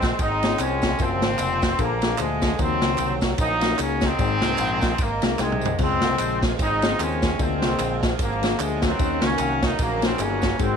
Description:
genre	uptempo gospel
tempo	150 BPM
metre	4/4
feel	swing 58% on 8ths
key	unclear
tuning	A4 = 440 Hz
part	warm horn section	melody	0.0-10.8 s	C3 to Eb4	-24 LUFS	equal	none
part	fingered electric bass with an envelope filter	bass	0.0-10.8 s	F1 to Eb2	-28 LUFS	right 1 dB	none
part	swinging big-band drum kit	drums	0.0-10.7 s	crash cymbal, kick drum, ride cymbal, snare drum, toms	-24 LUFS	equal	none
part	tambourine and handclaps	percussion	0.0-10.7 s	none	-37 LUFS	right 3 dB	none
part	mellow tine electric piano	accompaniment	0.4-10.8 s	Ab2 to Eb5	-29 LUFS	left 13 dB	medium stereo tremolo
part	bright tonewheel organ	sustained chords	5.8-10.8 s	Db3 to C5	-34 LUFS	right 13 dB	overdrive, chorus vibrato, slow rotary speaker
room	light reverb, studio reverb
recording	1960s-style stereo with parts hard left and right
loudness	-20 LUFS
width	side -7 dB against mid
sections	0.0-10.8 A section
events	drum fill 5.4-5.8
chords	0.0 Dbmaj7; 1.0 Gbmaj7; 1.8 Bb7; 2.6 Ebm7; 4.2 Ab; 5.8 Dbmaj7; 7.4 Bb7; 9.0 Ebm7

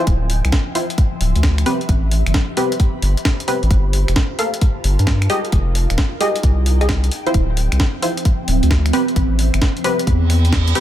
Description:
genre	UK garage, two-step garage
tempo	132 BPM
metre	4/4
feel	swing 66% on 16ths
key	unclear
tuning	A4 = 437 Hz
part	punchy chord stab	stabs	0.0-10.8 s	C4 to F5	-22 LUFS	equal	chorus, tape echo
part	ethereal airy pad	texture	0.0-10.8 s	F3 to G5	-26 LUFS	right 1 dB	ensemble chorus, built-in reverb, phaser, sidechain pumping
part	saturated sub bass	bass	0.1-10.7 s	D1 to G2	-16 LUFS	equal	none
part	breakbeat sampler-style drum kit	drums	0.1-10.8 s	finger snaps, hi-hat, snare drum	-24 LUFS	equal	none
part	electronic kick drum	drums	0.1-10.6 s	none	-18 LUFS	equal	none
part	reverse cymbal	sound effects	10.2-10.8 s	none	-25 LUFS	right 8 dB	none
room	digital ambience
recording	none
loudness	-14 LUFS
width	side -12 dB against mid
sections	0.0-10.8 A section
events	reverse cymbal 10.2-10.8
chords	0.0 Dm9; 1.7 Am9; 3.7 Gm9; 5.3 Fm9; 7.1 Dm9; 8.9 Am9

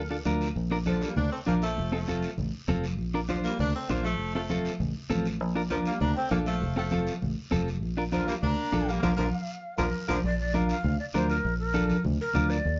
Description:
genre	latin, cumbia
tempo	199 BPM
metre	4/4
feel	straight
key	Bb major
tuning	A4 = 440 Hz
part	breathy shakuhachi	second line	0.0-0.2, 5.7-12.8 s	Bb4 to Bb5	-36 LUFS	equal	none
part	fingered electric bass	bass	0.0-12.8 s	F1 to Eb2	-32 LUFS	equal	none
part	clean electric guitar	accompaniment	0.1-12.6 s	C4 to C5	-34 LUFS	equal	none
part	congas	percussion	0.3-12.5 s	none	-35 LUFS	equal	none
part	guiro	percussion	0.3-12.8 s	none	-48 LUFS	equal	none
part	dark saxophone section	melody	0.9-10.2 s	D3 to D4	-35 LUFS	equal	none
room	moderate studio reverb, RT60 0.5 s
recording	heard from further back in the room, nothing above 7.5 kHz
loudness	-28 LUFS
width	mono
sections	0.6-10.2 A section; 10.2-12.8 B section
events	band accent 9.0-10.2; shakuhachi solo 10.2-12.8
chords	0.0 Bb; 1.8 F; 3.0 Bb; 4.2 F; 5.4 Bb; 6.6 F; 7.8 Bb

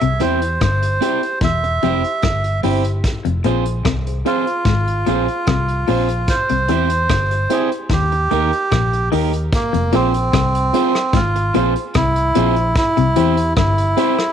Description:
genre	roots reggae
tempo	74 BPM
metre	4/4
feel	straight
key	F harmonic minor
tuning	A4 = 439 Hz
part	melodica	melody	0.0-14.3 s	Bb3 to E5	-19 LUFS	right 2 dB	none
part	clean electric guitar	riff	0.0-13.8 s	E2 to E3	-22 LUFS	left 9 dB	none
part	vintage muted fingered electric bass	bass	0.0-13.9 s	E1 to E2	-20 LUFS	equal	none
part	vintage brush drum kit	drums	0.0-14.3 s	hi-hat, kick drum, rim click	-22 LUFS	equal	none
part	electric guitar at the edge of break-up	accompaniment	0.2-14.2 s	Bb3 to C5	-22 LUFS	right 12 dB	none
part	warm upright piano	stabs	0.2-14.2 s	Eb4 to C5	-25 LUFS	left 10 dB	none
room	moderate spring reverb, RT60 1.9 s, studio ambience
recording	1960s-style stereo with parts hard left and right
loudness	-15 LUFS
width	side -8 dB against mid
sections	0.0-9.5 A section; 9.5-14.3 B section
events	none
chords	0.0 C; 3.0 Fm; 6.3 C; 7.9 Eb; 9.5 Fm; 12.8 C

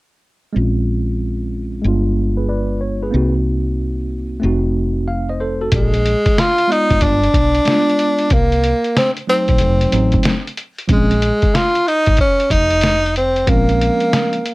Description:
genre	hip hop, jazz-hop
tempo	93 BPM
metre	4/4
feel	swing 65% on 16ths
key	unclear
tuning	A4 = 440 Hz
part	tine electric piano	accompaniment	0.5-14.4 s	F3 to F5	-20 LUFS	right 1 dB	medium stereo tremolo, low-pass filter
part	woody fretless electric bass	bass	0.6-13.9 s	F1 to C2	-18 LUFS	equal	ensemble chorus
part	lo-fi sampler-style drum kit	drums	5.7-14.5 s	hi-hat, kick drum, snare drum	-18 LUFS	equal	none
part	breathy tenor saxophone	melody	5.8-14.5 s	Ab3 to F4	-15 LUFS	equal	none
room	light reverb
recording	none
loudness	-14 LUFS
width	side -21 dB against mid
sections	0.6-5.7 A section; 5.7-14.5 B section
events	filter sweep on tine electric piano 0.6-5.7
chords	0.6 Bbm9; 1.9 G7b9; 3.1 Cm7b5; 4.4 F7b9; 5.7 Bb5; 7.0 G7b9; 8.3 Cm7b5; 9.6 F7b9; 10.9 Bbm9

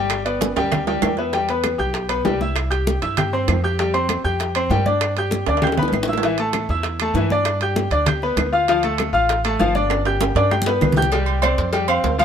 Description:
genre	latin, salsa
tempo	196 BPM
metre	4/4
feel	straight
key	unclear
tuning	A4 = 440 Hz
part	bright grand piano	accompaniment	0.0-12.2 s	E3 to G6	-20 LUFS	left 2 dB	none
part	upright bass	bass	0.0-12.2 s	G1 to G2	-24 LUFS	right 1 dB	none
part	bongos and cowbell	percussion	0.1-12.2 s	none	-28 LUFS	left 3 dB	none
part	claves	percussion	0.1-12.0 s	none	-32 LUFS	right 10 dB	none
part	congas	percussion	0.1-12.2 s	none	-26 LUFS	equal	none
part	timbales and agogo bells	percussion	0.1-12.2 s	none	-26 LUFS	right 8 dB	none
room	light reverb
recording	minimal, uncompressed stereo recording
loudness	-17 LUFS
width	side -8 dB against mid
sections	0.0-1.3 A section; 1.3-11.1 B section; 11.1-12.2 C section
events	drum fill 0.4-1.3, 5.5-6.2, 9.9-11.1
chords	0.1 G; 1.3 Em; 2.6 C; 3.8 Fsus2; 5.0 Gadd9; 6.2 A5; 7.5 G7; 8.7 Dm; 9.9 G; 11.1 Csus2; 11.7 Fsus2

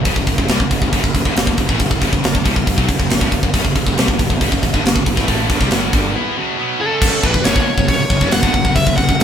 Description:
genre	heavy metal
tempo	138 BPM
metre	4/4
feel	straight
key	F# minor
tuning	A4 = 442 Hz
part	heavy high-gain guitar	riff	0.0-9.2 s	F#2 to E4	-22 LUFS	right 5 dB	distortion
part	scooped high-gain guitar	riff	0.0-9.2 s	F#2 to E4	-23 LUFS	left 8 dB	distortion
part	fuzz fingered electric bass	bass	0.0-9.2 s	F#1 to C#2	-22 LUFS	equal	overdrive
part	tight metal drum kit	drums	0.1-9.2 s	crash cymbal, hi-hat, kick drum, snare drum	-16 LUFS	equal	none
part	high-gain lead guitar	melody	6.8-9.2 s	A4 to F#5	-18 LUFS	equal	distortion
part	cranked stack guitar	riff	7.0-9.2 s	F#2 to G#3	-22 LUFS	left 4 dB	overdrive
room	moderate studio ambience, RT60 0.5 s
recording	band playing live in one room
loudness	-13 LUFS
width	side -8 dB against mid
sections	0.0-7.0 A section; 7.0-9.2 B section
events	break 6.2-7.0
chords	0.0 F#m

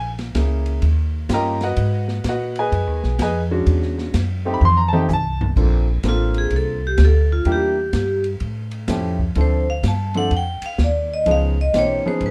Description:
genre	jazz, small-group swing and bop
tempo	126 BPM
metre	4/4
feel	swing 66% on 8ths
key	Bb major from 5.6 s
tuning	A4 = 438 Hz
part	warm grand piano	accompaniment	0.0-12.3 s	E3 to C6	-25 LUFS	equal	none
part	upright bass	bass	0.0-12.3 s	Ab1 to Bb2	-22 LUFS	equal	none
part	open jazz drum kit	drums	0.2-12.3 s	crash cymbal, hi-hat, kick drum, ride cymbal, snare drum, toms	-30 LUFS	equal	none
part	vibraphone with medium hard mallets	melody	6.1-12.3 s	F4 to A5	-24 LUFS	equal	none
room	little or no reverb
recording	none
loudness	-20 LUFS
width	mono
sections	0.0-5.6 A section; 5.6-12.3 A section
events	drum fill 4.6-5.6; vibraphone solo 5.6-12.3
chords	0.0 Bbm7b5; 0.8 Eb7; 1.8 Abm7; 3.7 E13; 4.6 F7; 5.6 Bbmaj7; 7.5 Em7b5; 8.4 A7b13; 9.4 Dm7; 11.3 Db9

